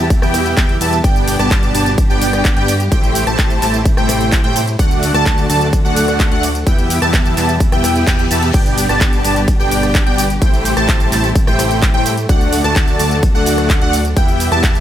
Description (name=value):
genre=EDM, festival progressive house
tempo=128 BPM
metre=4/4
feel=straight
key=G major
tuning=A4 = 440 Hz
part: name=dark chamber string section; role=sustained chords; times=0.0-14.8 s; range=B2 to A4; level=-23 LUFS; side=left 1 dB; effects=sidechain pumping
part: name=plucky unison lead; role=arpeggios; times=0.0-14.8 s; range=F#5 to A5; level=-21 LUFS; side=equal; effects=phaser, analog chorus, sidechain pumping, dub echo
part: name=dense compressed supersaw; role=riff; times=0.0-14.8 s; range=A3 to A5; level=-18 LUFS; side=equal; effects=sidechain pumping, dub echo
part: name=fat analog bass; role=bass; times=0.0-14.8 s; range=G1 to A2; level=-20 LUFS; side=equal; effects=sidechain pumping
part: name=big-room dance drum kit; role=drums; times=0.1-14.8 s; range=crash cymbal, handclaps, hi-hat, ride cymbal, rim click, tambourine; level=-22 LUFS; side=right 1 dB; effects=none
part: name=electronic kick drum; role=drums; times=0.1-14.7 s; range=none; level=-14 LUFS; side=equal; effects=none
part: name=reverse cymbal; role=sound effects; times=7.8-8.5 s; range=none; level=-28 LUFS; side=left 6 dB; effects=none
room=digital ambience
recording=none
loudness=-11 LUFS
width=side -11 dB against mid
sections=0.0-14.8 A section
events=reverse cymbal 7.8-8.5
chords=0.0 Em; 1.0 G; 2.9 Am7; 4.8 D; 6.7 Em; 8.5 G; 10.4 Am7; 12.3 D; 14.2 Em